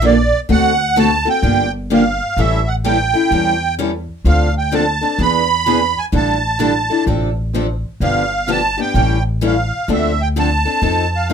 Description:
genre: acoustic string swing (jazz manouche)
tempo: 128 BPM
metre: 4/4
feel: swing 63% on 8ths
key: D minor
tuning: A4 = 442 Hz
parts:
  - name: musette accordion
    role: melody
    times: 0.0-11.3 s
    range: D5 to B5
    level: -17 LUFS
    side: right 4 dB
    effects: none
  - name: picked steel-string acoustic guitar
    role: accompaniment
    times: 0.0-11.3 s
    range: C3 to A4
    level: -20 LUFS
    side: left 7 dB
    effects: none
  - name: picked steel-string acoustic guitar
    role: accompaniment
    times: 0.0-11.3 s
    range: C3 to B4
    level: -21 LUFS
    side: right 5 dB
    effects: none
  - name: upright bass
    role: bass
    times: 0.0-11.3 s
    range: G1 to F2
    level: -19 LUFS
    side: left 1 dB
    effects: none
room: light reverb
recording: minimal, uncompressed stereo recording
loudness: -14 LUFS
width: side -7 dB against mid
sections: 0.0-11.3 A section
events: none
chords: 0.0 Bbmaj7; 0.5 D7; 1.4 Gm7; 2.4 A7; 4.3 Dm7; 5.2 E7; 6.1 A7sus4; 7.1 Dm7/A; 8.0 G7; 9.0 A7; 9.9 Dm7; 10.8 F7

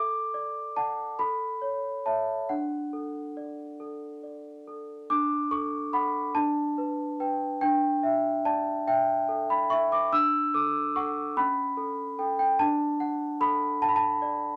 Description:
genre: classical, lullaby for celesta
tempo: 48 BPM (dotted quarters)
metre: 6/8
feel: uneven beats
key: D major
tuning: A4 = 442 Hz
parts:
  - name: large celesta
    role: solo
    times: 0.0-14.6 s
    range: C#4 to E6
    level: -28 LUFS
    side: equal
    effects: none
room: moderate studio ambience, RT60 0.5 s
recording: none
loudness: -27 LUFS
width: mono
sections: 0.0-5.1 A section; 5.1-14.6 A section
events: none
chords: 0.0 D/A; 1.2 A; 2.5 D; 6.4 G/D; 7.6 A5/D; 10.1 D; 11.4 A7/C#; 12.6 D

